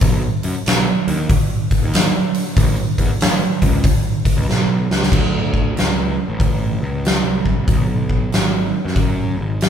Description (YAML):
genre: blues rock power trio and southern rock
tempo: 94 BPM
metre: 4/4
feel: swing 65% on 8ths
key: unclear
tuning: A4 = 439 Hz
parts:
  - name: fuzz picked electric bass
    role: bass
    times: 0.0-9.7 s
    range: G#1 to F#2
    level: -22 LUFS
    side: equal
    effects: overdrive
  - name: huge arena drum kit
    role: drums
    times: 0.0-9.7 s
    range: crash cymbal, hi-hat, kick drum, snare drum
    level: -16 LUFS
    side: equal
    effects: none
room: light reverb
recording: band playing live in one room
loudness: -15 LUFS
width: side -8 dB against mid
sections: 0.0-5.1 A section; 5.1-9.7 B section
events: drum fill 4.5-5.1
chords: none